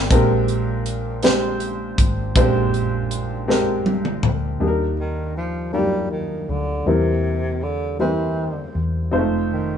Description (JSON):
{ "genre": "slow gospel", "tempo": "53 BPM (dotted quarters)", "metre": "6/8", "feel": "straight", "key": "unclear", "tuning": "A4 = 435 Hz", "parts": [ { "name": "warm upright piano", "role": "accompaniment", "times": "0.0-9.8 s", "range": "Bb2 to D5", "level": "-22 LUFS", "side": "left 1 dB", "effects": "none" }, { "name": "hollow-body short-scale fingered electric bass", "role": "bass", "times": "0.0-9.8 s", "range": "F1 to E2", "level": "-24 LUFS", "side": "right 1 dB", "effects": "none" }, { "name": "tight funk drum kit", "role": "drums", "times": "0.1-4.4 s", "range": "hi-hat, kick drum, snare drum, toms", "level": "-19 LUFS", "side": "equal", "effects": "none" }, { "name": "breathy tenor saxophone", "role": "melody", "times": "5.0-9.8 s", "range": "C3 to G3", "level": "-24 LUFS", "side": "right 1 dB", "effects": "none" } ], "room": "moderate studio reverb, RT60 0.8 s", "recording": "band playing live in one room, nothing above 10.5 kHz", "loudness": "-18 LUFS", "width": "side -8 dB against mid", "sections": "0.1-4.6 A section; 4.6-9.8 B section", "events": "drum fill 3.5-4.6", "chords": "0.1 Bb13; 4.6 Ebmaj7; 6.9 C7/E; 9.1 F7", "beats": "| 0.10 1.23 | 2.36 3.48 | 4.61 5.74 | 6.87 8.00 | 9.13" }